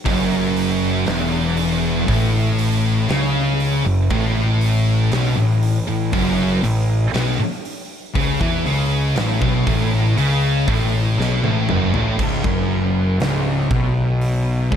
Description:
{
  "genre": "stoner and doom metal",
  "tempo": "59 BPM",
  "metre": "4/4",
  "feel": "straight",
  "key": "unclear",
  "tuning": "A4 = 440 Hz",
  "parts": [
    { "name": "thick fuzz guitar", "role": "riff", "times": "0.0-14.8 s", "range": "C#2 to E3", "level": "-20 LUFS", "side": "left 5 dB", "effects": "distortion" },
    { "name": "scooped high-gain guitar", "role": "riff", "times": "0.1-12.2 s", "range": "E2 to E3", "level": "-24 LUFS", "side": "right 1 dB", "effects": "distortion" },
    { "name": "thick fuzz guitar", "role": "riff", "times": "0.1-14.8 s", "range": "C#2 to E3", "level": "-22 LUFS", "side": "right 6 dB", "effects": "distortion" },
    { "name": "fuzz picked electric bass", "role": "bass", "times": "0.1-14.8 s", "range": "C#1 to E2", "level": "-24 LUFS", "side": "equal", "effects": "overdrive" },
    { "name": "big rock drum kit", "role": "drums", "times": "0.1-14.8 s", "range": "crash cymbal, hi-hat, kick drum, snare drum, toms", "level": "-25 LUFS", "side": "right 1 dB", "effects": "none" }
  ],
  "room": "light reverb, small room ambience",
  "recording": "dark, warm production",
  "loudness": "-16 LUFS",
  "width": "side -8 dB against mid",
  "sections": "0.0-12.2 A section; 12.2-14.8 B section",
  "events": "drum fill 11.2-12.2",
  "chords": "0.0 F#5; 4.1 A5; 12.2 N.C."
}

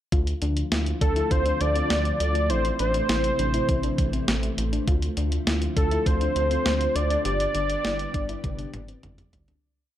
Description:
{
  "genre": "synth-pop",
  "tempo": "101 BPM",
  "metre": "4/4",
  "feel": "straight",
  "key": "D dorian",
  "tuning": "A4 = 440 Hz",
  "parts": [
    { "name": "soft string machine", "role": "sustained chords", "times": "0.4-9.6 s", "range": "C3 to G4", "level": "-32 LUFS", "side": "equal", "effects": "ensemble chorus" },
    { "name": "soft round pluck", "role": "arpeggios", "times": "0.1-9.6 s", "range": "C4 to G4", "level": "-34 LUFS", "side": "left 7 dB", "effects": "chorus, tape echo" },
    { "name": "rubbery square bass", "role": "bass", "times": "0.1-9.5 s", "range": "G1 to D2", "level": "-27 LUFS", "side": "equal", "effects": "none" },
    { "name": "clean 12-bit digital drum machine", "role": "drums", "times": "0.1-9.6 s", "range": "hi-hat, kick drum, snare drum, toms", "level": "-27 LUFS", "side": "equal", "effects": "none" },
    { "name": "wide unison lead", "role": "melody", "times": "1.0-9.0 s", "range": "A4 to D5", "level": "-26 LUFS", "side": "equal", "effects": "tape echo" }
  ],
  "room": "moderate plate reverb, RT60 1.7 s, digital ambience",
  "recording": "dark, warm production",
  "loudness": "-22 LUFS",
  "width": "side -11 dB against mid",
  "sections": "0.1-9.6 verse",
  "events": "fade-out 7.3-9.6; drum fill 8.4-9.6",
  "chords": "0.1 Dm; 2.5 Am; 4.9 Dm; 7.3 G"
}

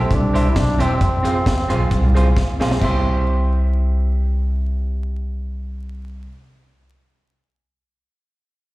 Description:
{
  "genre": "ska",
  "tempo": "133 BPM",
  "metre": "4/4",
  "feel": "swing 54% on 8ths",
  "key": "C major",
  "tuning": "A4 = 440 Hz",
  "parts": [
    { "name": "warm trombone", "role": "melody", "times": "0.0-2.4 s", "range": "C4 to E4", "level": "-23 LUFS", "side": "equal", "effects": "analog delay, slapback echo" },
    { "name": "dark upright piano", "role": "stabs", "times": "0.0-6.2 s", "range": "G4 to F5", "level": "-30 LUFS", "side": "left 3 dB", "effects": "analog delay, slapback echo" },
    { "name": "upright bass", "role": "bass", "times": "0.0-6.2 s", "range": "E1 to F2", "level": "-18 LUFS", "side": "equal", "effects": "none" },
    { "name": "deep reggae drum kit", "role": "drums", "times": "0.1-2.9 s", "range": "crash cymbal, hi-hat, kick drum, snare drum", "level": "-22 LUFS", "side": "equal", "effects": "analog delay" },
    { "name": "semi-hollow electric guitar", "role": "accompaniment", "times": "0.3-6.3 s", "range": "C4 to C5", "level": "-26 LUFS", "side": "right 3 dB", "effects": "spring reverb, slapback echo" }
  ],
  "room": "little or no reverb",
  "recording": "live gig heard through the venue's PA, recital hall reverb, vinyl crackle",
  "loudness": "-16 LUFS",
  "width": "side -18 dB against mid",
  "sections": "0.0-2.8 A section; 2.8-6.4 B section",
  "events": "drum fill 2.4-2.8",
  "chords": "0.0 C; 1.0 Fm; 2.8 C"
}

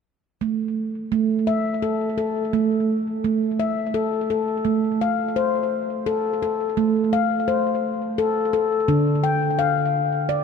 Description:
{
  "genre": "world meditative",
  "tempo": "57 BPM (dotted quarters)",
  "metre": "6/8",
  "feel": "straight",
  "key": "A minor",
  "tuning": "A4 = 440 Hz",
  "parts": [
    { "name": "handpan", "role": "arpeggios", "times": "0.4-10.4 s", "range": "D3 to G5", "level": "-20 LUFS", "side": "equal", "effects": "ping-pong delay" }
  ],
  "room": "wet cathedral reverb, RT60 6.2 s",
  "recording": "none",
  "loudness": "-20 LUFS",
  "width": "side -6 dB against mid",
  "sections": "0.4-4.7 A section; 4.7-10.4 B section",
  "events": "none",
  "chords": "0.4 A5; 4.7 Am; 8.9 Dm"
}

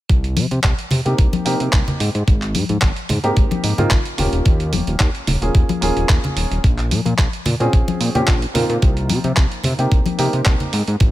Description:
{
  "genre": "nu-disco, nu disco",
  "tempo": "110 BPM",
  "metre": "4/4",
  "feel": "swing 53% on 16ths",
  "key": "unclear",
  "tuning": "A4 = 441 Hz",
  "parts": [
    { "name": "fat analog bass", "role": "bass", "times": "0.1-11.1 s", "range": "Eb1 to C3", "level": "-20 LUFS", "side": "equal", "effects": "sidechain pumping" },
    { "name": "dusty soul sampler-style drum kit", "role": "drums", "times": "0.1-11.1 s", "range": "handclaps, hi-hat", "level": "-24 LUFS", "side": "right 2 dB", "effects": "none" },
    { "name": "electronic kick drum", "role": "drums", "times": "0.1-11.1 s", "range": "none", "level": "-16 LUFS", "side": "equal", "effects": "none" },
    { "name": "congas", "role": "percussion", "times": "0.4-10.7 s", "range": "none", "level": "-24 LUFS", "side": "left 3 dB", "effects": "none" },
    { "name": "dark grand piano", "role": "accompaniment", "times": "1.1-10.7 s", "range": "Bb3 to Ab4", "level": "-23 LUFS", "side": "right 1 dB", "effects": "sidechain pumping, ping-pong delay" }
  ],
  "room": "little or no reverb",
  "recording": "none",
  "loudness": "-15 LUFS",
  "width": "side -15 dB against mid",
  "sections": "0.1-11.1 A section",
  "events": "none",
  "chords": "0.1 Cm7; 2.0 Abmaj7; 4.2 Eb7sus4; 6.6 Bbm9; 8.8 Cm7"
}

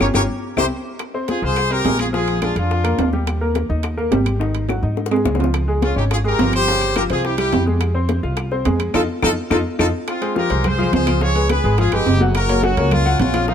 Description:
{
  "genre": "latin, salsa",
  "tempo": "211 BPM",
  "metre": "4/4",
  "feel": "straight",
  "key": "F minor",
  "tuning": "A4 = 440 Hz",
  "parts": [
    { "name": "brilliant horn section", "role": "melody", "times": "0.0-3.1, 5.8-13.5 s", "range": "Bb3 to Db5", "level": "-21 LUFS", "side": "left 1 dB", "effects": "none" },
    { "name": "bright upright piano", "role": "accompaniment", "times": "0.0-13.5 s", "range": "Db3 to Gb5", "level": "-22 LUFS", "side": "left 2 dB", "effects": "none" },
    { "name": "upright bass", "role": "bass", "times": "0.0-13.5 s", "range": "Gb1 to Ab2", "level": "-20 LUFS", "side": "equal", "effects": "none" },
    { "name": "bongos", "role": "percussion", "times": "0.0-13.5 s", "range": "none", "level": "-29 LUFS", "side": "left 6 dB", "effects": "none" },
    { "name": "claves", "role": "percussion", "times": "0.0-13.5 s", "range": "none", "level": "-31 LUFS", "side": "left 6 dB", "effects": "none" },
    { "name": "congas", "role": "percussion", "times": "0.0-13.5 s", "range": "none", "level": "-27 LUFS", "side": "left 2 dB", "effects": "none" },
    { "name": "timbales", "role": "percussion", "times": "0.0-13.5 s", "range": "none", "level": "-25 LUFS", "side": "right 7 dB", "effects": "none" }
  ],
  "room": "light reverb",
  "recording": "none",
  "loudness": "-16 LUFS",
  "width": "side -8 dB against mid",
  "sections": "0.0-1.0 A section; 1.0-10.1 A section; 10.1-13.5 B section",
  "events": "drum fill 0.0-1.0, 4.7-5.5, 8.9-10.1; band accent 0.0-1.0, 8.9-10.1",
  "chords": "0.4 C; 1.0 Fm; 2.1 Bb7; 3.3 Eb; 4.4 Ab5; 5.5 Db; 6.7 Bbm13/G (rootless); 7.2 C; 7.8 Fm; 8.9 F7; 10.1 Fmadd9; 11.2 Db7; 12.4 Gbmaj7"
}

